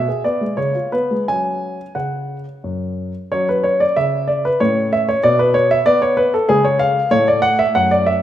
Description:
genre	classical-period piano sonatina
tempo	85-97 BPM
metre	3/4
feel	rubato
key	F# minor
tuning	A4 = 440 Hz
part	warm grand piano	solo	0.0-8.2 s	F#2 to G#5	-15 LUFS	equal	none
room	moderate recital hall reverb, RT60 1.6 s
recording	none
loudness	-14 LUFS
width	side -11 dB against mid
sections	0.0-3.3 A section; 3.3-8.2 B section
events	none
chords	0.0 G#dim; 0.6 C#7; 1.3 F#5; 4.6 A; 5.2 N.C.; 6.5 C#; 7.1 F#m/A

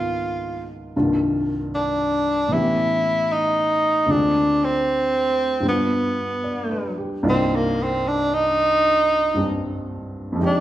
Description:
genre	jazz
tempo	76 BPM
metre	4/4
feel	swing 69% on 8ths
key	C minor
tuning	A4 = 440 Hz
part	warm tenor saxophone	melody	0.0-10.6 s	Bb3 to F4	-20 LUFS	right 1 dB	none
part	warm baby grand piano	accompaniment	0.0-10.6 s	C2 to D5	-23 LUFS	equal	none
room	wet large studio reverb, RT60 1.3 s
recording	band playing live in one room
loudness	-18 LUFS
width	side -13 dB against mid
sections	0.0-7.2 A section; 7.2-10.6 B section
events	tenor saxophone solo 7.2-10.6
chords	0.0 Db13; 0.9 Cm11; 2.5 A7; 4.1 Dm7b5; 5.7 G7; 7.2 Cm11

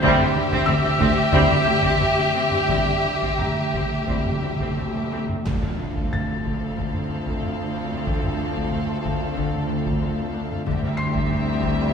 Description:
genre	cinematic, suspense film score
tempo	85-94 BPM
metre	4/4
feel	straight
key	D minor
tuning	A4 = 440 Hz
part	muted symphonic violin section	melody	0.0-11.9 s	E5 to F5	-29 LUFS	left 1 dB	none
part	muted symphonic violin section	second line	0.0-11.9 s	G4 to A4	-27 LUFS	left 1 dB	none
part	muted symphonic viola section	accompaniment	0.0-11.9 s	C4	-31 LUFS	equal	none
part	bright trombone section	sustained chords	0.0-11.9 s	D3 to A3	-31 LUFS	right 3 dB	none
part	warm French horn section	sustained chords	0.0-11.9 s	C4 to F4	-33 LUFS	left 3 dB	none
part	concert harp	riff	0.0-11.9 s	D3 to D4	-28 LUFS	left 3 dB	none
part	muted studio cello section	bass	0.0-11.9 s	D2	-31 LUFS	right 2 dB	none
part	muted symphonic double bass section	bass	0.0-11.9 s	D2	-30 LUFS	right 2 dB	none
part	taiko ensemble	drums	0.0-11.9 s	none	-29 LUFS	equal	none
part	timpani	percussion	0.0-6.4 s	D3	-31 LUFS	right 1 dB	none
part	felt-muted upright piano	texture	0.0-11.9 s	E5 to C7	-32 LUFS	left 2 dB	none
part	impact	sound effects	5.5-8.1 s	none	-32 LUFS	right 1 dB	none
room	wet recital hall reverb, RT60 1.6 s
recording	recorded in a church or concert hall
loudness	-20 LUFS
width	side -6 dB against mid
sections	0.0-5.5 A section; 5.5-11.9 B section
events	timpani fill 0.0-5.5; impact 5.5-8.1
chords	0.0 Cadd9/D; 5.5 Dm7; 10.7 Cadd9/D

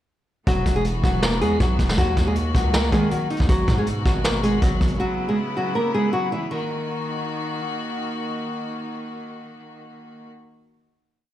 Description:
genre	hip hop, trap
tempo	159 BPM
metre	4/4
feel	half-time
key	Eb phrygian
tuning	A4 = 439 Hz
part	nylon-string guitar	melody	0.5-7.6 s	Eb3 to Eb5	-23 LUFS	equal	digital delay
part	clear chamber string section	sustained chords	0.5-10.3 s	Cb3 to F#4	-29 LUFS	left 1 dB	none
part	distorted 808-style bass	bass	0.5-5.0 s	E1 to Eb3	-24 LUFS	equal	distortion
part	vintage brush drum kit	drums	0.5-5.0 s	hi-hat, kick drum, snare drum	-22 LUFS	equal	none
room	little or no reverb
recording	played on a big sound system in a bare room, large studio reverb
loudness	-20 LUFS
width	side -12 dB against mid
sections	0.5-6.5 hook; 6.5-9.5 final chord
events	none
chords	0.5 Esus2; 2.0 Ebm; 3.5 Abm7; 5.0 Dbm7; 6.5 Ebm

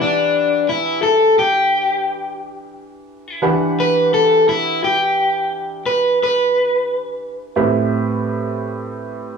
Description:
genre	blues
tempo	58 BPM (dotted quarters)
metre	12/8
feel	straight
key	E minor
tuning	A4 = 440 Hz
part	overdriven semi-hollow guitar	melody	0.0-7.5 s	D4 to B4	-15 LUFS	left 1 dB	none
part	clear upright piano	accompaniment	0.0-9.4 s	A2 to F#5	-22 LUFS	right 2 dB	none
room	moderate stone room reverb, RT60 1.1 s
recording	band playing live in one room, small room ambience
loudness	-15 LUFS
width	side -6 dB against mid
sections	0.0-9.4 A section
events	none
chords	0.0 Em9; 7.6 Am9

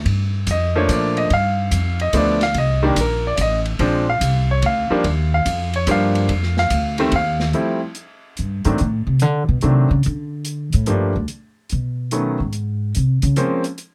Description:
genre	jazz piano trio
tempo	144 BPM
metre	3/4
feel	swing 67% on 8ths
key	unclear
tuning	A4 = 440 Hz
part	upright bass	bass	0.0-13.4 s	A1 to D3	-21 LUFS	equal	none
part	open jazz drum kit	drums	0.1-13.9 s	hi-hat, kick drum, ride cymbal, snare drum	-31 LUFS	equal	none
part	clear baby grand piano	melody	0.5-13.6 s	Eb3 to F5	-22 LUFS	equal	none
room	little or no reverb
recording	close, detailed microphones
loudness	-19 LUFS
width	mono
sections	0.0-7.5 A section; 7.5-13.9 A section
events	grand piano solo 0.0-7.5; upright bass solo 7.5-13.9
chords	0.1 Gm7; 1.3 G7(no3); 2.5 Cm7; 3.8 Bb7; 5.0 Ebmaj9; 6.3 F7(no3); 7.5 Fadd9; 8.8 D7(no3); 10.0 G7sus2; 11.3 B; 12.5 Bbm9 (rootless)

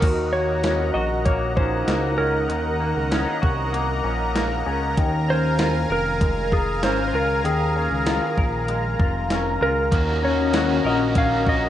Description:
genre	dream pop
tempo	97 BPM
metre	4/4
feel	straight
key	Eb dorian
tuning	A4 = 440 Hz
part	clean lap steel guitar	melody	0.0-11.7 s	Ab4 to F5	-25 LUFS	right 1 dB	ping-pong delay, plate reverb
part	overdriven semi-hollow guitar	accompaniment	0.0, 9.9-11.7 s	Eb3 to Gb4	-29 LUFS	right 4 dB	tremolo, lush chorus
part	lush unison pad	sustained chords	0.0-11.7 s	Gb4 to Bb5	-26 LUFS	right 1 dB	chorus
part	semi-hollow electric guitar	arpeggios	0.0-11.7 s	Eb3 to Bb4	-27 LUFS	left 3 dB	lush chorus, ping-pong delay
part	fat analog bass	bass	0.0-11.7 s	F1 to Eb2	-26 LUFS	equal	none
part	gated 80s digital drum machine	drums	0.0-11.6 s	crash cymbal, hi-hat, kick drum, snare drum	-23 LUFS	equal	gated reverb, gated reverb snare
part	vibraphone with medium hard mallets	texture	0.0-3.7, 10.2-11.7 s	Db4 to Gb4	-28 LUFS	left 5 dB	stereo widening, ping-pong delay
room	wet small room ambience, RT60 0.5 s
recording	rough home demo mix, nothing above 10.5 kHz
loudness	-19 LUFS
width	side -11 dB against mid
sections	0.0-11.7 A section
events	none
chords	0.0 Ebm7; 5.0 Bbm7; 9.9 Ebm7

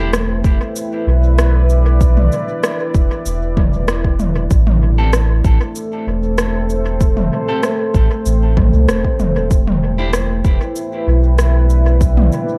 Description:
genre	ambient dub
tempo	96 BPM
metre	4/4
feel	straight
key	E minor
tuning	A4 = 442 Hz
part	deep dark ambient pad	sustained chords	0.0-12.6 s	A3 to G5	-23 LUFS	equal	chorus, built-in reverb, cassette tape
part	clean electric guitar	stabs	0.0-0.1, 5.0-10.1 s	C4 to A4	-30 LUFS	equal	spring reverb, cassette tape, dub echo
part	warm sub bass	bass	0.0-12.3 s	E1 to C2	-16 LUFS	equal	none
part	organic electronic drum kit	drums	0.1-12.5 s	cabasa, rim click, toms	-23 LUFS	equal	overdrive, cassette tape, dub echo
part	electronic kick drum	drums	0.4-12.1 s	none	-17 LUFS	equal	overdrive, cassette tape
room	light reverb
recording	home recording on cassette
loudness	-15 LUFS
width	mono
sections	0.0-12.6 A section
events	none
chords	0.0 Em7; 4.5 Am7; 9.5 Em7

